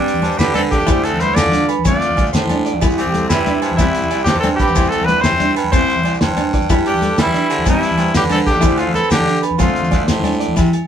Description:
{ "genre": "highlife guitar band", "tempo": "124 BPM (dotted quarters)", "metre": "12/8", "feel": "straight", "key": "C major", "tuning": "A4 = 440 Hz", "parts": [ { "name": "clear trumpet", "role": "melody", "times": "0.0-10.0 s", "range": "D4 to D5", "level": "-18 LUFS", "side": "equal", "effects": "none" }, { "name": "raspy tenor saxophone", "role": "second line", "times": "0.0-10.1 s", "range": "G3 to F4", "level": "-27 LUFS", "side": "left 4 dB", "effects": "none" }, { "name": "clean electric guitar", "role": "accompaniment", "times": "0.0-10.8 s", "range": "C4 to E4", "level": "-21 LUFS", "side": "equal", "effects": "none" }, { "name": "electric guitar through a small old amp", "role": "arpeggios", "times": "0.0-10.6 s", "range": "G4 to E5", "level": "-23 LUFS", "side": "right 6 dB", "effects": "none" }, { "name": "raspy baritone saxophone", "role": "bass", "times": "0.0-10.7 s", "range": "C2 to G3", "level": "-22 LUFS", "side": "right 1 dB", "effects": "none" }, { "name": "cloth-damped thuddy drum kit", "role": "drums", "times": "0.1-10.8 s", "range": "hi-hat, kick drum, snare drum", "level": "-20 LUFS", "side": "equal", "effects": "none" }, { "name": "congas", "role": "percussion", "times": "0.1-10.8 s", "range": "none", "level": "-21 LUFS", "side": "left 2 dB", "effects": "none" }, { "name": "shekere", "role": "percussion", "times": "0.1-10.7 s", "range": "none", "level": "-25 LUFS", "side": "left 2 dB", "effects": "none" }, { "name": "agogo bells", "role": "percussion", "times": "0.2-10.9 s", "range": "none", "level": "-29 LUFS", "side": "right 4 dB", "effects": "none" } ], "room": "wet studio reverb, RT60 0.6 s", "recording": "band playing live in one room", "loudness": "-13 LUFS", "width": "side -9 dB against mid", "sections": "0.0-10.6 A section", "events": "none", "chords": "0.0 Gsus2; 0.9 Dm; 2.8 C; 6.7 Gsus2; 8.6 Dm" }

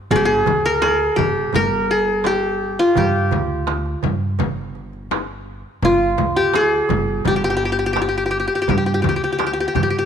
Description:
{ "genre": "Arabic maqam ensemble", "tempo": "84 BPM", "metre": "4/4", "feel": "straight", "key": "G maqam bayati", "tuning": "A4 = 437 Hz", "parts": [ { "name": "qanun", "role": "melody", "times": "0.1-10.1 s", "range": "F4 to Bb4", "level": "-17 LUFS", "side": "left 1 dB", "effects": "none" }, { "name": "upright bass", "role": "bass", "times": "0.1-10.1 s", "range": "G1 to G2", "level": "-24 LUFS", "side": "right 2 dB", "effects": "none" }, { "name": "darbuka", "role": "percussion", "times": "0.1-10.0 s", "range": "none", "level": "-26 LUFS", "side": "right 11 dB", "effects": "none" }, { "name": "frame drum", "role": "percussion", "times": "0.1-9.9 s", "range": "none", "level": "-26 LUFS", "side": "left 9 dB", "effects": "none" } ], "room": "light reverb, studio reverb", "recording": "1960s-style stereo with parts hard left and right", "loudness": "-16 LUFS", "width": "side -8 dB against mid", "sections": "0.0-10.1 A section", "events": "none", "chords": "none" }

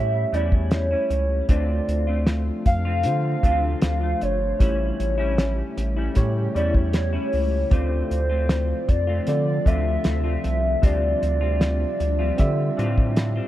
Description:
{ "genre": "indie pop, bedroom pop", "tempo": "77 BPM", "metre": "4/4", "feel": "straight", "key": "D minor", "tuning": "A4 = 438 Hz", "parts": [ { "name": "hollow clarinet-like synth lead", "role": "melody", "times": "0.0-13.2 s", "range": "C5 to F5", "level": "-26 LUFS", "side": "equal", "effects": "lush chorus, analog delay" }, { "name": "semi-hollow electric guitar", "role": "accompaniment", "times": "0.0-13.5 s", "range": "D3 to F4", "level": "-31 LUFS", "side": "left 3 dB", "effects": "analog chorus, vibrato effect, analog delay" }, { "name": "tine electric piano", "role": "accompaniment", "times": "0.0-13.5 s", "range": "A3 to E5", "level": "-32 LUFS", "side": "right 2 dB", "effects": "fast stereo tremolo, cassette tape, analog delay" }, { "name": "round analog bass", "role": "bass", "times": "0.0-13.4 s", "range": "G1 to D3", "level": "-24 LUFS", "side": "equal", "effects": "none" }, { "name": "cloth-damped thuddy drum kit", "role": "drums", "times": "0.3-13.4 s", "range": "hi-hat, kick drum, snare drum", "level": "-21 LUFS", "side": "equal", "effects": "none" }, { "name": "ethereal airy pad", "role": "sustained chords", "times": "2.5-13.5 s", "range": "C3 to E5", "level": "-33 LUFS", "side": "equal", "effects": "ensemble chorus, built-in reverb" } ], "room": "small room reverb", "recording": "echo-heavy mix", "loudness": "-20 LUFS", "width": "side -14 dB against mid", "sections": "0.0-13.5 A section", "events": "none", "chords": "0.0 A7; 1.5 Dm7; 4.6 A7; 7.7 Dm7; 10.8 Dm11" }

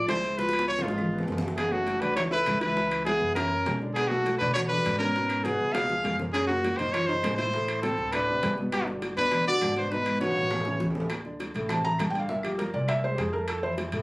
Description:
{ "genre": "Afro-Cuban jazz", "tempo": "202 BPM", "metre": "4/4", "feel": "straight", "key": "F# minor", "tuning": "A4 = 440 Hz", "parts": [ { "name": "bright trumpet", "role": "melody", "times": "0.0-10.9 s", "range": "E#4 to E#5", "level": "-26 LUFS", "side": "equal", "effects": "none" }, { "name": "felt-muted upright piano", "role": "second line", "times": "0.0-13.7 s", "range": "G#3 to Bb5", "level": "-31 LUFS", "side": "equal", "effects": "none" }, { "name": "warm concert grand piano", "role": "accompaniment", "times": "0.0-14.0 s", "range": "A2 to A5", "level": "-35 LUFS", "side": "left 1 dB", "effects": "none" }, { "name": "upright bass", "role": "bass", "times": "0.0-14.0 s", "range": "F#1 to B2", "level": "-35 LUFS", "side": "equal", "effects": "none" }, { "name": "bongos", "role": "percussion", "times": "0.1-14.0 s", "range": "none", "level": "-37 LUFS", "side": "left 1 dB", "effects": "none" }, { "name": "claves", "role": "percussion", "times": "0.1-13.6 s", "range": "none", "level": "-42 LUFS", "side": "left 1 dB", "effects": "none" }, { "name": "congas", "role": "percussion", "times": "0.1-14.0 s", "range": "none", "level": "-36 LUFS", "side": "equal", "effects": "none" }, { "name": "timbales", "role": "percussion", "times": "0.1-14.0 s", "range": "none", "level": "-37 LUFS", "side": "right 2 dB", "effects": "none" } ], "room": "light reverb", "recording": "recorded on a phone in the room, studio ambience", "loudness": "-24 LUFS", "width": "side -22 dB against mid", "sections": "0.0-1.6 A section; 1.6-11.1 B section; 11.1-14.0 C section", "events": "drum fill 0.4-1.6, 5.7-6.3, 9.9-11.1; felt piano solo 11.1-14.0", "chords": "0.4 C#7; 1.6 F#m7; 2.8 C#m7; 3.4 F#7; 4.0 Bm7; 5.2 G#madd9; 5.7 C#6; 6.3 F#6; 7.5 Amadd11; 8.1 D5; 8.7 Gmaj7; 9.9 G#m7; 10.5 A; 11.1 D7sus4; 12.3 Gm7; 12.9 C7b13; 13.5 Fmaj7" }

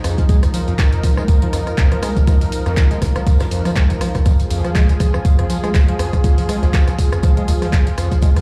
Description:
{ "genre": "acid house", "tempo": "121 BPM", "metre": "4/4", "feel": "swing 56% on 16ths", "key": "F minor", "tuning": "A4 = 440 Hz", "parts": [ { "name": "warm analog pad", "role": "sustained chords", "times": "0.0-8.4 s", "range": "F3 to Bb4", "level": "-27 LUFS", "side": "equal", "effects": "chorus, sidechain pumping" }, { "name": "overdriven acid bass", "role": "riff", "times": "0.0-8.4 s", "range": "Eb2 to Ab3", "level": "-22 LUFS", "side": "equal", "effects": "distortion, lush chorus, sidechain pumping, tape echo" }, { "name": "punchy analog drum machine", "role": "drums", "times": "0.0-8.4 s", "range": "handclaps, hi-hat, rim click, tambourine", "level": "-30 LUFS", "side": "equal", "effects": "none" }, { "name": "warm soul drum kit", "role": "drums", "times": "0.0-8.4 s", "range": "hi-hat, snare drum, tambourine", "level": "-39 LUFS", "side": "equal", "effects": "none" }, { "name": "electronic kick drum", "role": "drums", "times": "0.2-8.3 s", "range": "none", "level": "-16 LUFS", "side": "equal", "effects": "none" } ], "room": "light reverb", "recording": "played on a big sound system in a bare room, large studio reverb", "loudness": "-16 LUFS", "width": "mono", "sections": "0.0-8.4 A section", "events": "none", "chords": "0.0 Fm7" }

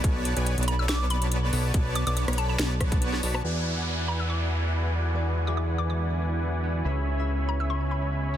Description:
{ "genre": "future bass", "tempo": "141 BPM", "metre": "4/4", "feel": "swing 54% on 16ths, half-time", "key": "unclear", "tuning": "A4 = 440 Hz", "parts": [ { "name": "dense compressed supersaw", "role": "riff", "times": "0.0-8.4 s", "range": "B3 to B5", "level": "-32 LUFS", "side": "right 1 dB", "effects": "sidechain pumping, low-pass filter" }, { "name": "fat analog bass", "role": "bass", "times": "0.0-8.4 s", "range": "B1 to E2", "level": "-27 LUFS", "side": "equal", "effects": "sidechain pumping" }, { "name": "electronic kick drum", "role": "drums", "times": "0.0-3.0 s", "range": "none", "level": "-24 LUFS", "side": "equal", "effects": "studio ambience" }, { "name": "trap drum kit", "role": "drums", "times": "0.0-8.4 s", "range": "hi-hat, rim click, snare drum", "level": "-33 LUFS", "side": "left 1 dB", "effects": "low-pass filter on snare, studio ambience, low-pass filter on hats" }, { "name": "hollow square pluck", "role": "melody", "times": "0.7-8.1 s", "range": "A5 to E6", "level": "-35 LUFS", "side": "left 1 dB", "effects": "chorus, sidechain pumping, tape echo" }, { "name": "glassy digital keys", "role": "accompaniment", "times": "3.4-8.4 s", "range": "C#3 to F#5", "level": "-37 LUFS", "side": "equal", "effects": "chorus, phaser, sidechain pumping, dub echo" }, { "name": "shimmering ambient pad", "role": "sustained chords", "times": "4.7-8.4 s", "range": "C#3 to F#4", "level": "-39 LUFS", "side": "equal", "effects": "chorus, built-in reverb, vintage 12-bit sampler grit, sidechain pumping" }, { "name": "downlifter", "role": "sound effects", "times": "3.4-6.8 s", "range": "none", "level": "-36 LUFS", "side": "equal", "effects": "none" } ], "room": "little or no reverb", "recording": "dense, heavily limited modern master", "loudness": "-24 LUFS", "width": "side -11 dB against mid", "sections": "0.0-3.4 A section; 3.4-8.4 B section", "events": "drop 0.0-3.4", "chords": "0.0 Bm9; 3.4 E9; 6.8 C#m7" }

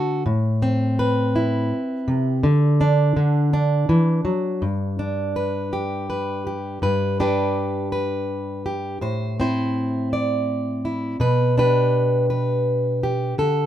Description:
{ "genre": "folk, solo fingerstyle acoustic guitar", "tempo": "83 BPM", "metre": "3/4", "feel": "straight", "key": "G major", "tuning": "A4 = 439 Hz", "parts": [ { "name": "fingerpicked plugged-in steel-string acoustic guitar", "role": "solo", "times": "0.0-13.7 s", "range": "G2 to D5", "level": "-19 LUFS", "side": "equal", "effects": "none" } ], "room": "light reverb", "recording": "minimal, uncompressed stereo recording", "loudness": "-19 LUFS", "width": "side -11 dB against mid", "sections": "0.0-6.8 A section; 6.8-13.7 B section", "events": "none", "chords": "0.3 Am; 2.5 N.C.; 3.2 D; 4.6 G; 9.0 Am; 11.2 G/B" }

